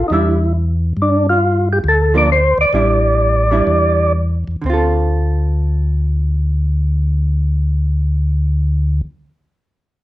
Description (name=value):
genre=jazz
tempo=118-139 BPM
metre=4/4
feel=swing 66% on 8ths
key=D minor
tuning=A4 = 440 Hz
part: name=percussive tonewheel organ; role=melody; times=0.0-4.1 s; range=D4 to D5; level=-15 LUFS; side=equal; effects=slow rotary speaker
part: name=mellow tonewheel organ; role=bass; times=0.0-9.0 s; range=A1 to G2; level=-15 LUFS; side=equal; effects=slow rotary speaker
part: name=vintage hollow-body jazz guitar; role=accompaniment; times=0.1-9.1 s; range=D3 to A4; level=-20 LUFS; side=right 2 dB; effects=none
room=light reverb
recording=none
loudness=-13 LUFS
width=side -16 dB against mid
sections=0.0-4.7 A section; 4.7-8.7 B section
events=slowing down 1.0-4.7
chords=0.0 A7sus4 (rootless); 1.0 G7(no3); 2.7 A7sus4; 4.7 Dm7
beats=0.11 0.55 | 0.98 1.41 1.85 2.29 | 2.74 3.20 3.67 4.15 | 4.65 5.16 5.67 6.18 | 6.69 7.20 7.70 8.21